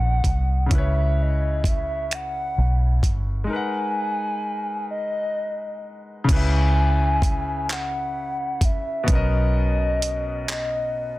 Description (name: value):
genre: slow six-eight R&B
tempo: 43 BPM (dotted quarters)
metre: 6/8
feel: straight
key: C# dorian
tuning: A4 = 440 Hz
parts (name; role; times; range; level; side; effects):
- hollow clarinet-like synth lead; melody; 0.0-11.2 s; D#5 to G#5; -27 LUFS; equal; chorus
- bright concert grand piano; accompaniment; 0.0-11.2 s; B2 to F#5; -29 LUFS; left 2 dB; none
- vintage muted fingered electric bass; bass; 0.0-11.2 s; G1 to C#2; -22 LUFS; equal; none
- dusty soul sampler-style drum kit; drums; 0.2-10.7 s; crash cymbal, finger snaps, handclaps, hi-hat, kick drum; -22 LUFS; equal; overdrive
room: little or no reverb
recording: dense, heavily limited modern master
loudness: -20 LUFS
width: side -18 dB against mid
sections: 0.0-6.3 A section; 6.3-11.2 B section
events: break 3.5-6.3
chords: 0.0 Bmaj7; 0.7 C#m7; 3.5 G#m9; 6.3 C#m7; 9.1 Bmaj7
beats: | 0.71 2.10 | 3.50 4.89 | 6.29 7.69 | 9.08 10.48